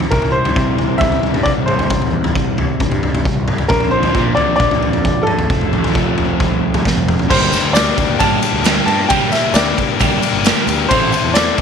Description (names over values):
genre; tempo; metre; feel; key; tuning
indie rock; 133 BPM; 4/4; straight; G dorian; A4 = 440 Hz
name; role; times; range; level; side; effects
crunchy overdriven guitar; riff; 0.0-11.6 s; F2 to E4; -21 LUFS; right 13 dB; wide subtle chorus, tape echo
raw garage guitar; riff; 0.0-11.6 s; F2 to A4; -20 LUFS; left 13 dB; overdrive
raw garage drum kit; drums; 0.0-11.6 s; crash cymbal, kick drum, ride cymbal, snare drum, toms; -17 LUFS; equal; none
bright upright piano; melody; 0.1-11.6 s; A4 to A5; -19 LUFS; equal; none
growling picked electric bass; bass; 0.1-11.6 s; F1 to C3; -22 LUFS; equal; overdrive
tambourine; percussion; 7.5-11.6 s; none; -31 LUFS; right 19 dB; none
room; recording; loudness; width
light reverb, small room ambience; 1960s-style stereo with parts hard left and right; -13 LUFS; side -7 dB against mid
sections
0.0-7.3 A section; 7.3-11.6 B section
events
drum fill 6.8-7.3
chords
0.1 C; 3.7 Bb; 5.5 F; 7.3 Gmadd9; 10.9 Am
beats
| 0.12 0.56 1.01 1.46 | 1.90 2.35 2.80 3.25 | 3.70 4.15 4.60 5.05 | 5.50 5.95 6.40 6.85 | 7.30 7.75 8.20 8.65 | 9.10 9.55 10.01 10.46 | 10.91 11.36